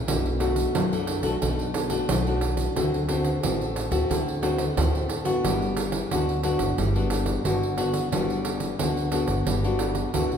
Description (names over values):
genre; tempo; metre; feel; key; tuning
samba and choro; 90 BPM; 4/4; straight; G major; A4 = 441 Hz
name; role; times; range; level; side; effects
nylon-string guitar; accompaniment; 0.0-10.4 s; A2 to F#4; -26 LUFS; left 3 dB; none
upright bass; bass; 0.0-10.4 s; G1 to F#2; -29 LUFS; equal; none
pandeiro; percussion; 0.1-10.4 s; none; -28 LUFS; right 4 dB; none
room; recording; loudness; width
wet recital hall reverb, RT60 1.7 s; recorded in a church or concert hall; -22 LUFS; side -8 dB against mid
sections
0.0-10.4 A section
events
none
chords
0.1 Bm7; 2.8 D7; 5.4 Gmaj7